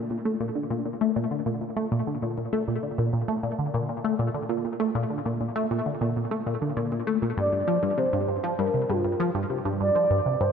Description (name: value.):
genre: ambient.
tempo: 99 BPM.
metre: 4/4.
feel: straight.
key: unclear.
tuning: A4 = 442 Hz.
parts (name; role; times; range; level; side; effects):
tight sequenced synth; riff; 0.0-10.5 s; G2 to A3; -25 LUFS; left 1 dB; chorus, phaser, tape echo.
mellow horn-like synth lead; melody; 7.4-10.5 s; F4 to D5; -25 LUFS; right 1 dB; lush chorus, tape echo.
room: wet lush hall reverb, RT60 3.2 s.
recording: none.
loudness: -24 LUFS.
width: side -7 dB against mid.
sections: 0.0-10.5 A section.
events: none.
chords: 0.0 Bb; 7.4 G7(no3).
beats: | 0.10 0.71 1.32 1.92 | 2.53 3.13 3.74 4.35 | 4.95 5.56 6.17 6.77 | 7.38 7.98 8.59 9.20 | 9.80 10.41.